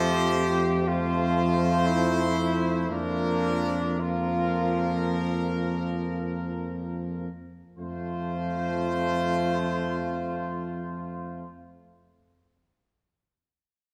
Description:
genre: classical, hymn-like piece for brass band.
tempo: 41-64 BPM.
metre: 4/4.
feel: rubato.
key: F major.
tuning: A4 = 435 Hz.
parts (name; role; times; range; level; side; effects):
bright trumpet section; melody; 0.0-11.5 s; Bb4 to C5; -37 LUFS; equal; none.
warm flugelhorn; second line; 0.0-11.5 s; D4 to G4; -32 LUFS; equal; none.
clear euphonium; accompaniment; 0.0-11.5 s; A3 to Bb3; -37 LUFS; equal; none.
warm trombone; accompaniment; 0.0-11.4 s; F3; -37 LUFS; equal; none.
mellow tuba; bass; 0.0-11.5 s; F2; -31 LUFS; equal; none.
room: wet recital hall reverb, RT60 1.8 s.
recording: recorded in a church or concert hall.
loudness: -27 LUFS.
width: mono.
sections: 0.0-7.8 A section; 7.8-13.1 B section.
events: slowing down 0.0-7.8.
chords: 0.0 F; 2.9 Bb/F; 7.8 F.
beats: 0.88 1.87 | 2.90 4.00 5.15 6.40 | 7.79 9.11 10.42.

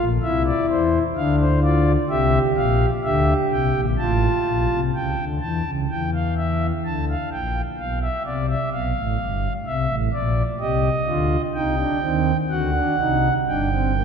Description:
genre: classical, baroque-style 3-part fugue for pipe organ.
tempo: 63 BPM.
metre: 3/4.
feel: straight.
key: unclear.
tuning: A4 = 441 Hz.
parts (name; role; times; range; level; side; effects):
pipe organ, principal; solo; 0.0-14.0 s; G1 to A5; -19 LUFS; equal; none.
room: wet church reverb, RT60 3.3 s.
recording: dark, warm production.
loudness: -19 LUFS.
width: side -6 dB against mid.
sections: 0.0-4.9 A section; 4.9-14.0 B section.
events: none.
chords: 0.0 N.C.; 1.1 Dm7; 2.1 C7; 4.0 F/A; 4.9 A7/C#; 6.8 Dm; 7.8 G7/B; 9.7 C; 10.6 Cmadd9; 12.5 D; 13.5 Gm.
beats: 0.21 1.15 | 2.08 3.03 3.98 | 4.94 5.89 6.84 | 7.79 8.73 9.66 | 10.60 11.55 12.51 | 13.47.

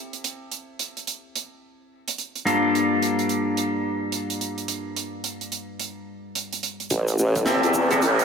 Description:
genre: glitch hop.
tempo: 108 BPM.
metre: 4/4.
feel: swing 62% on 16ths.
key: G dorian.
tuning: A4 = 445 Hz.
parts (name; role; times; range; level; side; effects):
clean electric guitar; stabs; 0.0-8.0 s; G2 to A4; -24 LUFS; left 1 dB; vintage 12-bit sampler grit, sidechain pumping, ping-pong delay.
modern studio drum kit; drums; 0.1-8.2 s; hi-hat, rim click, shaker, snare drum; -28 LUFS; right 5 dB; high-pass filter on hats, high-pass filter on snare, high-pass filter on perc, high-pass filter on room.
formant-sweep wobble bass; bass; 6.9-8.2 s; A1 to E2; -21 LUFS; right 1 dB; chorus, overdrive, high-pass filter.
electronic kick drum; drums; 6.9-8.0 s; none; -35 LUFS; right 1 dB; high-pass filter on kick.
riser; sound effects; 7.4-8.2 s; none; -26 LUFS; left 1 dB; none.
room: wet church reverb, RT60 3.5 s.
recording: dreamy mix soaked in reverb.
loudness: -22 LUFS.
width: side -6 dB against mid.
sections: 0.0-6.9 A section; 6.9-8.2 B section.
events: filter sweep on clean electric guitar 0.0-6.9; build-up 6.9-8.2; riser 7.4-8.2.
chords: 0.0 Am7; 2.5 Gm7; 6.9 Am7.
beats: | 0.24 0.80 1.35 1.91 | 2.46 3.02 3.57 4.13 | 4.68 5.24 5.80 6.35 | 6.91 7.46 8.02.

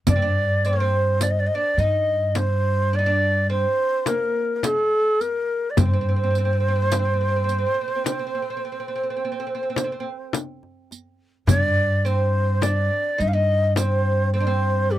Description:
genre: Arabic maqam ensemble.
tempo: 105 BPM (eighths).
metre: 10/8.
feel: straight.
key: G maqam bayati.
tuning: A4 = 440 Hz.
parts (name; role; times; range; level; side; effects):
breathy bright low ney; melody; 0.1-15.0 s; G4 to F5; -23 LUFS; equal; none.
oud; second line; 0.1-15.0 s; G3 to Eb4; -30 LUFS; right 2 dB; none.
upright bass; bass; 0.1-15.0 s; G2; -22 LUFS; equal; none.
darbuka; percussion; 0.1-14.0 s; none; -23 LUFS; left 1 dB; none.
frame drum; percussion; 0.1-14.0 s; none; -27 LUFS; left 6 dB; none.
riq; percussion; 0.1-14.0 s; none; -30 LUFS; right 9 dB; none.
room: light reverb.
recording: dry, close 1970s-style studio recording.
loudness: -19 LUFS.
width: side -13 dB against mid.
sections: 0.1-15.0 A section.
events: none.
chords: none.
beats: | 0.07 0.65 1.22 1.79 2.36 2.93 3.50 4.07 4.64 5.21 | 5.78 6.35 6.92 7.49 8.06 8.63 9.20 9.78 10.35 10.91 | 11.49 12.06 12.63 13.20 13.77 14.34 14.91.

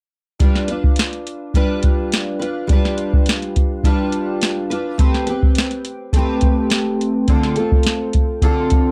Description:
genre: indie pop, bedroom pop.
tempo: 105 BPM.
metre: 4/4.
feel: straight.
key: unclear.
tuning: A4 = 441 Hz.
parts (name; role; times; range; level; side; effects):
picked steel-string acoustic guitar; accompaniment; 0.4-8.9 s; D3 to B4; -22 LUFS; equal; analog chorus, warbly pitch drift, plate reverb.
soft vintage rhythm box; drums; 0.4-8.9 s; hi-hat, kick drum, snare drum; -18 LUFS; equal; vintage 12-bit sampler grit.
room: light reverb.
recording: dry, gritty hardware recording.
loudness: -18 LUFS.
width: mono.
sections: 0.4-8.9 A section.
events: none.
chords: 0.4 G7; 5.0 Am9; 7.3 Dm7.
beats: | 0.40 0.98 1.55 2.12 | 2.70 3.27 3.85 4.42 | 4.99 5.57 6.14 6.71 | 7.29 7.86 8.43.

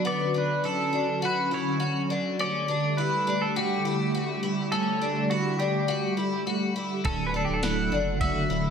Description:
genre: dream pop.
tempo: 103 BPM.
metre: 4/4.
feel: straight.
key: unclear.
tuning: A4 = 439 Hz.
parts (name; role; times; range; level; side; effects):
hollow soft pad; sustained chords; 0.0-8.7 s; D3 to A4; -28 LUFS; right 1 dB; ensemble chorus.
picked twelve-string acoustic guitar; arpeggios; 0.0-8.7 s; B3 to F#4; -30 LUFS; left 5 dB; lush chorus, tape echo.
pedal steel guitar; melody; 0.1-8.7 s; F#4 to F#5; -30 LUFS; right 1 dB; tape echo.
mellow electric guitar; accompaniment; 7.0-8.7 s; D3 to D4; -31 LUFS; right 3 dB; harmonic tremolo, lush chorus.
saturated sub bass; bass; 7.0-8.7 s; D1 to F#1; -33 LUFS; equal; none.
soft vintage rhythm box; drums; 7.0-8.3 s; kick drum, ride cymbal, snare drum, tambourine; -31 LUFS; equal; none.
room: moderate lush hall reverb, RT60 1.8 s.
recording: none.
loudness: -24 LUFS.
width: side -7 dB against mid.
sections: 0.0-8.7 A section.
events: none.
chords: 0.0 Bm; 2.4 Gsus2; 7.0 D.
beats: | 0.05 0.63 1.22 1.80 | 2.38 2.96 3.55 4.13 | 4.71 5.29 5.88 6.46 | 7.04 7.62 8.21.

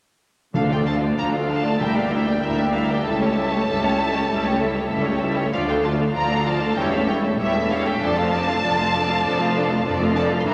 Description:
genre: quick classical-period movement for symphony orchestra.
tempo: 97 BPM.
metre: 4/4.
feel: straight.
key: D minor.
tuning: A4 = 440 Hz.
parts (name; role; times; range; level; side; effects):
rich studio violin section; melody; 0.5-10.5 s; E5 to C6; -28 LUFS; equal; none.
rich studio violin section; second line; 0.5-10.5 s; E4 to F5; -27 LUFS; equal; none.
rich studio viola section; accompaniment; 0.5-10.5 s; E3 to F4; -26 LUFS; equal; none.
rich studio cello section; bass; 0.5-10.5 s; C#2 to G2; -29 LUFS; equal; none.
rich studio double bass section; bass; 0.5-10.5 s; E1 to D2; -31 LUFS; equal; none.
timpani; percussion; 0.5-2.7 s; D3; -31 LUFS; equal; none.
room: wet scoring stage reverb, RT60 1.9 s.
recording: none.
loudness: -21 LUFS.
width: mono.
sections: 0.5-10.5 A section.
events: none.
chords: 0.5 Dm; 1.8 Em7b5/D; 3.1 A7/C#; 5.5 Dm; 6.8 A7/E; 8.0 Dm/F.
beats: | 0.55 1.18 1.81 2.44 | 3.06 3.68 4.29 4.91 | 5.53 6.14 6.76 7.38 | 8.00 8.62 9.23 9.84 | 10.46.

